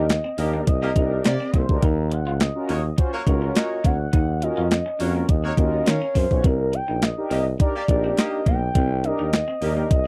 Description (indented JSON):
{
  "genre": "early-eighties boogie funk",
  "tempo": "104 BPM",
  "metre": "4/4",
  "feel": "straight",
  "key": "C minor",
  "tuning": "A4 = 439 Hz",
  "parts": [
    { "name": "expressive portamento lead", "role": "melody", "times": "0.0-10.1 s", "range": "Bb4 to G5", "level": "-29 LUFS", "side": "equal", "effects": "chorus" },
    { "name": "mellow synth brass", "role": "accompaniment", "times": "0.0-9.9 s", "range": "Db4 to Db5", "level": "-30 LUFS", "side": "equal", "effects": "chorus" },
    { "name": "semi-hollow electric guitar", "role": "riff", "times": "0.0-9.9 s", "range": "Bb3 to F4", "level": "-35 LUFS", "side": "equal", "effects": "lush chorus" },
    { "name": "clear tuba", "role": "bass", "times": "0.0-10.1 s", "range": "Bb1 to Eb3", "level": "-27 LUFS", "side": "equal", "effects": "none" },
    { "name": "crisp 8-bit digital drum machine", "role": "drums", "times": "0.1-10.0 s", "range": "handclaps, hi-hat, kick drum, snare drum", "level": "-22 LUFS", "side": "equal", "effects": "overdrive" },
    { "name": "warm horn section", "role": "second line", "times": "0.4-9.7 s", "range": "Bb3 to F5", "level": "-34 LUFS", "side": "equal", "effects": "none" }
  ],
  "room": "little or no reverb",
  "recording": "dry, close 1970s-style studio recording",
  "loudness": "-22 LUFS",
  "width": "mono",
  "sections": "0.0-10.1 A section",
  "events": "none",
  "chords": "0.0 Cm9; 1.8 Ebm9; 6.4 Cm9"
}